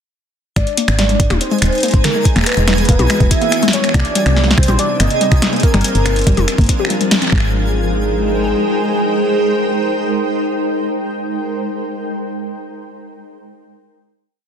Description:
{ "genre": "IDM", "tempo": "142 BPM", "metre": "4/4", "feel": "straight", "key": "Ab lydian", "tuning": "A4 = 440 Hz", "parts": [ { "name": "warm velvety synth lead", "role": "melody", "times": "0.6-11.3 s", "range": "G#4 to E5", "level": "-20 LUFS", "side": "right 1 dB", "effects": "chorus, tremolo, tape echo" }, { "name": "granular cloud pad", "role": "sustained chords", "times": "1.4-11.5 s", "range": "C3 to Bb5", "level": "-20 LUFS", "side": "equal", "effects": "built-in reverb, vintage 12-bit sampler grit" }, { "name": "warbly dusty pluck", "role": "arpeggios", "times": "0.6-7.5 s", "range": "G3 to G4", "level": "-21 LUFS", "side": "left 3 dB", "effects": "chorus, tape echo" }, { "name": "woody FM bass", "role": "bass", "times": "0.6-8.6 s", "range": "Eb1 to C2", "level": "-16 LUFS", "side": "equal", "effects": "none" }, { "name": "electro analog drum machine", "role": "drums", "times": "0.6-7.4 s", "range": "finger snaps, hi-hat, snare drum, toms", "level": "-18 LUFS", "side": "left 1 dB", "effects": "none" }, { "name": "electronic kick drum", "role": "drums", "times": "0.6-7.4 s", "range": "none", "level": "-14 LUFS", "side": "equal", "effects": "overdrive" }, { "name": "twinkling granular texture", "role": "texture", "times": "1.2-7.3 s", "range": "Ab4 to Ab5", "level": "-28 LUFS", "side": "right 2 dB", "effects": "built-in reverb, sidechain pumping" } ], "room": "light reverb, digital ambience", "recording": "dense, heavily limited modern master", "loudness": "-13 LUFS", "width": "side -8 dB against mid", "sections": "0.6-7.3 groove; 7.3-10.7 final chord", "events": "band accent 7.1", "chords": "0.6 Ab; 2.3 Emaj9; 3.9 Cm9; 5.6 Gm7; 7.3 Abmaj7" }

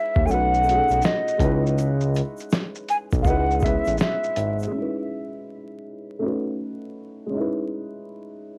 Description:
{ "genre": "lo-fi hip hop", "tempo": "81 BPM", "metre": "4/4", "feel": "swing 65% on 16ths", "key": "C# minor", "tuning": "A4 = 440 Hz", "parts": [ { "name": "breathy mellow silver concert flute", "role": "melody", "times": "0.0-4.6 s", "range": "D#5 to G#5", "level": "-26 LUFS", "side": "equal", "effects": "low-pass filter, cassette tape, analog delay" }, { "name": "dark upright piano", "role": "accompaniment", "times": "0.0-8.6 s", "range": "G#3 to B4", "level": "-30 LUFS", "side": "equal", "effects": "low-pass filter, cassette tape" }, { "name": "smooth synth bass", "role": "bass", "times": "0.2-4.7 s", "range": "G#1 to D#2", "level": "-26 LUFS", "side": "equal", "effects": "transformer saturation" }, { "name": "lo-fi sampler-style drum kit", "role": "drums", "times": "0.2-4.7 s", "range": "hi-hat, kick drum, shaker, snare drum", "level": "-26 LUFS", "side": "equal", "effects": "vintage 12-bit sampler grit, cassette tape" }, { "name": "tube shaker", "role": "percussion", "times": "0.3-4.7 s", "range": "none", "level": "-54 LUFS", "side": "equal", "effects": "none" } ], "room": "moderate studio ambience, RT60 0.5 s", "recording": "home recording on cassette, vinyl crackle", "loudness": "-23 LUFS", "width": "mono", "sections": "0.0-4.7 A section; 4.7-8.6 B section", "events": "none", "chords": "0.3 B7; 1.4 C#m9; 3.2 C#m7; 4.7 C#m9; 6.2 B7; 7.3 C#m9" }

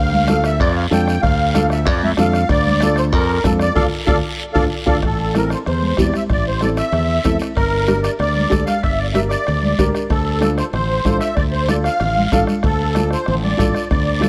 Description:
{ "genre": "latin, cumbia", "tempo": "189 BPM", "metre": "4/4", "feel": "straight", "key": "D minor", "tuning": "A4 = 440 Hz", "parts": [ { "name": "musette accordion", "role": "melody", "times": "0.0-14.3 s", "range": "A4 to G5", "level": "-23 LUFS", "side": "equal", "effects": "none" }, { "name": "modern bright fingered electric bass", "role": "bass", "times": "0.0-14.3 s", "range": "G1 to F2", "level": "-22 LUFS", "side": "equal", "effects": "none" }, { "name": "congas", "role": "percussion", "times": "0.1-14.3 s", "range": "none", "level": "-26 LUFS", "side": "equal", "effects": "none" }, { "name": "dark upright piano", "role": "accompaniment", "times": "0.3-14.3 s", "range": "C4 to Bb4", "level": "-25 LUFS", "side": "equal", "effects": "none" }, { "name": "bombo", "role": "percussion", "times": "0.3-14.3 s", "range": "none", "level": "-24 LUFS", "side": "equal", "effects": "none" }, { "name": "guiro", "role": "percussion", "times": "0.3-14.3 s", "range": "none", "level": "-34 LUFS", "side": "equal", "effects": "none" } ], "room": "light reverb", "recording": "none", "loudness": "-17 LUFS", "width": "mono", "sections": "0.0-5.0 A section; 5.0-14.3 B section", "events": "band accent 3.8-5.0; drum fill 4.2-5.0", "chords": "0.0 Dm; 5.0 Am; 7.6 Gm; 10.1 Dm" }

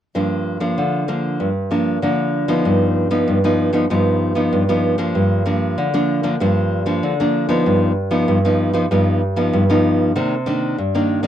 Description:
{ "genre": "samba", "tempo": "96 BPM", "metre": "4/4", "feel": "straight", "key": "G minor", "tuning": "A4 = 435 Hz", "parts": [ { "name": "nylon-string guitar", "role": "solo", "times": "0.1-11.3 s", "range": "G2 to D#4", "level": "-16 LUFS", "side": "equal", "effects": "none" } ], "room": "moderate booth ambience, RT60 0.2 s", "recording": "dry, close 1970s-style studio recording", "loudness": "-16 LUFS", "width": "side -10 dB against mid", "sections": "0.1-5.2 A section; 5.2-11.3 B section", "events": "none", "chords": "0.1 G7alt; 7.7 Gaug7; 10.2 Cm9" }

